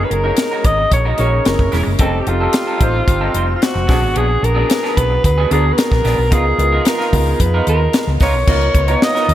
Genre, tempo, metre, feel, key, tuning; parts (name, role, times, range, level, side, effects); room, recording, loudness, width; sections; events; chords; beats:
polished 1980s jazz-funk pop; 111 BPM; 4/4; straight; A4 = 441 Hz
warm alto saxophone; melody; 0.0-9.3 s; F4 to D#5; -18 LUFS; right 1 dB; digital delay
clear concert grand piano; accompaniment; 0.0-9.3 s; B3 to C#5; -22 LUFS; left 1 dB; lush chorus
hollow-body short-scale fingered electric bass; bass; 0.0-9.3 s; E1 to E#2; -17 LUFS; equal
electric guitar through a small old amp; riff; 0.1-9.3 s; E#3 to C#5; -24 LUFS; right 2 dB; lush chorus
tight funk drum kit; drums; 0.1-9.3 s; crash cymbal, hi-hat, kick drum, snare drum; -17 LUFS; equal
light reverb, studio reverb; bright 1980s-style digital production; -13 LUFS; side -12 dB against mid
0.0-8.5 A section
0.0 F#69; 1.5 F#9; 2.0 F9; 3.9 A#7b9b13; 6.3 C#13
0.38 0.92 1.46 | 2.00 2.54 3.08 3.62 | 4.16 4.70 5.24 5.78 | 6.32 6.86 7.40 7.94 | 8.48 9.02